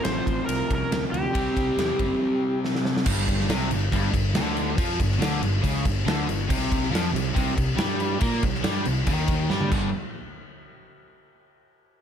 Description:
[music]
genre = blues rock power trio and southern rock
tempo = 140 BPM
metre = 4/4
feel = straight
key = unclear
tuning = A4 = 440 Hz
[part]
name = overdriven slide guitar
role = melody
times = 0.0-2.6 s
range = G4 to C5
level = -28 LUFS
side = equal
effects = tape echo
[part]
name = dark smooth lead guitar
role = second line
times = 0.0-2.6 s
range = C4 to F4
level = -34 LUFS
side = right 2 dB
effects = overdrive
[part]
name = crunchy overdriven guitar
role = riff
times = 0.0-9.9 s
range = F2 to C4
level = -26 LUFS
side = left 1 dB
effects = none
[part]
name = big rock drum kit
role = drums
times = 0.0-9.8 s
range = crash cymbal, kick drum, ride cymbal, snare drum, toms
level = -26 LUFS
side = equal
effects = none
[part]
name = fuzz fingered electric bass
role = bass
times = 0.1-9.9 s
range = F#1 to Bb2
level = -29 LUFS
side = right 1 dB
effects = overdrive
[sound]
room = moderate large studio reverb, RT60 0.8 s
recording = none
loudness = -22 LUFS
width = side -8 dB against mid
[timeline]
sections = 0.0-3.1 A section; 3.1-9.9 B section; 9.9-11.6 C section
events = drum fill 2.6-3.1, 9.5-9.9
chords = 0.0 F; 1.3 C5; 3.1 G5; 6.5 C5; 9.7 G5; 9.9 N.C.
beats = 0.05 0.48 0.91 | 1.34 1.77 2.20 2.63 | 3.06 3.49 3.92 4.35 | 4.78 5.21 5.63 6.06 | 6.49 6.92 7.35 7.78 | 8.21 8.64 9.06 9.49

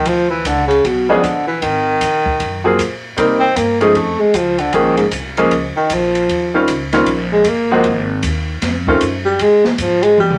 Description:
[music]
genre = jazz, small-group swing and bop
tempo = 154 BPM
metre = 4/4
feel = swing 64% on 8ths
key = unclear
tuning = A4 = 441 Hz
[part]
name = dark baritone saxophone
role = second line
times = 0.0-10.4 s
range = Ab2 to C4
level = -16 LUFS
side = equal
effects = none
[part]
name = upright bass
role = bass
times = 0.0-10.4 s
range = G1 to C3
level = -27 LUFS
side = equal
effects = none
[part]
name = open jazz drum kit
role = drums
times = 0.1-10.4 s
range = hi-hat, kick drum, ride cymbal, snare drum, toms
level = -26 LUFS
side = equal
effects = none
[part]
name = clear baby grand piano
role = accompaniment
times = 1.1-9.0 s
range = Eb3 to Bb4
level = -17 LUFS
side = equal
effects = none
[sound]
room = wet studio reverb, RT60 0.6 s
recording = none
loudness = -15 LUFS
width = mono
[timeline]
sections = 0.0-10.4 A section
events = baritone saxophone solo 0.0-10.4; drum fill 10.2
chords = 0.1 Ddim7(no3); 1.6 Ab7sus2; 3.2 Cm7; 4.0 Dbaug; 4.7 Bbm7; 6.3 Eb13; 7.8 Ab5; 8.6 F7b13; 9.4 Ab69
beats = | 0.07 0.46 0.85 1.24 | 1.63 2.02 2.41 2.79 | 3.18 3.57 3.96 4.35 | 4.74 5.13 5.52 5.91 | 6.29 6.68 7.07 7.46 | 7.85 8.24 8.63 9.02 | 9.40 9.79 10.18

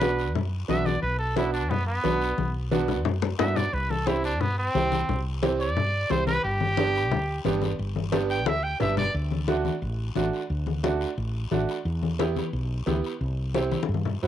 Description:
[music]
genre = latin, cumbia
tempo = 177 BPM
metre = 4/4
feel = straight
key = unclear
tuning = A4 = 440 Hz
[part]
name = clear trumpet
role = melody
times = 0.0-9.1 s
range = B3 to G5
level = -28 LUFS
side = right 1 dB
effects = cassette tape, plate reverb
[part]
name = bright upright piano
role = accompaniment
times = 0.0-14.3 s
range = A3 to G4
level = -29 LUFS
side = right 6 dB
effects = plate reverb
[part]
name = woody fretless electric bass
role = bass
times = 0.0-14.3 s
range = G1 to G2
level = -28 LUFS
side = equal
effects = none
[part]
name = congas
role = percussion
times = 0.0-14.1 s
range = none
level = -29 LUFS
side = left 8 dB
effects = none
[part]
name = guiro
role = percussion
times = 0.0-14.3 s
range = none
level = -42 LUFS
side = left 10 dB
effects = none
[sound]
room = moderate booth ambience, RT60 0.2 s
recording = home recording on cassette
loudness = -24 LUFS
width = side -11 dB against mid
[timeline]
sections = 0.0-9.1 A section; 9.1-14.3 B section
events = trumpet solo 0.0-9.1; drum fill 2.4-3.7, 8.5-9.1, 13.7-14.3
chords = 0.0 Bm; 3.7 C; 6.4 G; 9.1 D; 11.9 Em; 13.2 C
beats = 0.01 0.35 0.69 | 1.03 1.37 1.71 2.04 | 2.38 2.72 3.06 3.40 | 3.73 4.07 4.41 4.75 | 5.09 5.43 5.76 6.10 | 6.44 6.78 7.12 7.45 | 7.79 8.13 8.47 8.81 | 9.14 9.48 9.82 10.16 | 10.50 10.84 11.18 11.52 | 11.86 12.19 12.53 12.87 | 13.21 13.55 13.89 14.23

